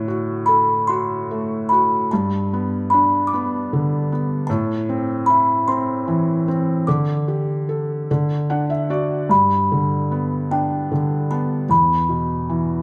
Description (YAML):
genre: children's music, lullaby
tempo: 50 BPM (dotted quarters)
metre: 6/8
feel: rubato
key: G major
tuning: A4 = 440 Hz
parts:
  - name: music box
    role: melody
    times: 0.0-12.8 s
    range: G5 to D6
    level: -21 LUFS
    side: equal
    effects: none
  - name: felt-muted upright piano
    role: accompaniment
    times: 0.0-12.8 s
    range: E2 to F#5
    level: -22 LUFS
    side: equal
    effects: none
room: light reverb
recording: dark, warm production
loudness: -20 LUFS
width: mono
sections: 0.0-9.3 A section; 9.3-12.8 B section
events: felt piano fill 8.1-9.3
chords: 0.0 D; 2.1 G; 4.5 Am; 6.9 Dsus4; 8.1 D; 9.3 G; 11.7 E5